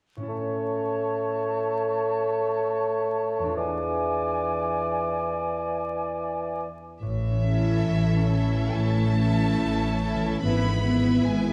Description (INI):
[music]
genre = classical, slow romantic movement for symphony orchestra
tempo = 71 BPM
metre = 4/4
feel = uneven beats, rubato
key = A major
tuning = A4 = 444 Hz
[part]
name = concert harp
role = arpeggios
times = 0.2-11.5 s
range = E2 to B4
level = -35 LUFS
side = equal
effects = none
[part]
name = mellow hollow small flute group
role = second line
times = 0.3-6.7 s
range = G#5 to A5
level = -36 LUFS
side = equal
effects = none
[part]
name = warm oboe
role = second line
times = 0.3-6.7 s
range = C#5 to D5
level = -32 LUFS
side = equal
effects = none
[part]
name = mellow bassoon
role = accompaniment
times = 0.3-6.7 s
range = E3 to A3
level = -31 LUFS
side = equal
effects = none
[part]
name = rich chamber violin section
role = melody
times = 7.0-11.5 s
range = E5 to B5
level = -37 LUFS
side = equal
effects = none
[part]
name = rich chamber cello section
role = bass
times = 7.0-11.5 s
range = E3 to B3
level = -29 LUFS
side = equal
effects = none
[part]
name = rich chamber double bass section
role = bass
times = 7.0-11.5 s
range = G#1 to A1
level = -28 LUFS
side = equal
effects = none
[part]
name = rich chamber violin section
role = second line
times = 7.5-11.5 s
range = A4 to E5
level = -37 LUFS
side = equal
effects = none
[part]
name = rich studio viola section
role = accompaniment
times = 7.5-11.5 s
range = B3 to E4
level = -32 LUFS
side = equal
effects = none
[sound]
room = wet scoring stage reverb, RT60 1.8 s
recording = vinyl crackle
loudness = -25 LUFS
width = mono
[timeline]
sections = 0.3-7.0 A section; 7.0-11.5 B section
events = none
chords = 0.3 A; 3.6 E7b9; 7.0 A; 10.4 E/G#